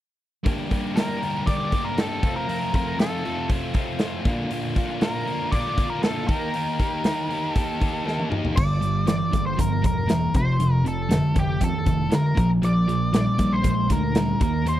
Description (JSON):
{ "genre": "classic rock", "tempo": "118 BPM", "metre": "4/4", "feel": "straight", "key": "G minor", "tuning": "A4 = 441 Hz", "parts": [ { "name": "sludgy distorted guitar", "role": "riff", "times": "0.4-14.8 s", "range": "F2 to G4", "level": "-24 LUFS", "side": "equal", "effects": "overdrive" }, { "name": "big rock drum kit", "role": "drums", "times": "0.5-14.8 s", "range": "crash cymbal, hi-hat, kick drum, snare drum, toms", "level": "-25 LUFS", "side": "equal", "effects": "none" }, { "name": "octave-fuzz lead guitar", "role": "melody", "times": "1.0-14.8 s", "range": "G4 to D5", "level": "-28 LUFS", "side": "left 1 dB", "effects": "distortion, slapback echo" }, { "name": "picked electric bass", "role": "bass", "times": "8.6-14.8 s", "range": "E1 to F2", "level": "-26 LUFS", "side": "equal", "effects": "none" } ], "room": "little or no reverb", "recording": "dry, close 1970s-style studio recording", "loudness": "-21 LUFS", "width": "side -13 dB against mid", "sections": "0.5-8.6 A section; 8.6-14.8 B section", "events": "drum fill 8.1-8.6", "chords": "0.5 Gm; 2.2 F; 4.3 Bb; 6.3 Eb; 8.6 Gm; 10.3 F; 12.4 Bb", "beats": "| 0.46 0.97 1.48 1.98 | 2.49 2.99 3.50 4.01 | 4.51 5.02 5.53 6.03 | 6.54 7.05 7.55 8.06 | 8.57 9.07 9.58 10.09 | 10.60 11.11 11.61 12.12 | 12.63 13.14 13.65 14.16 | 14.67" }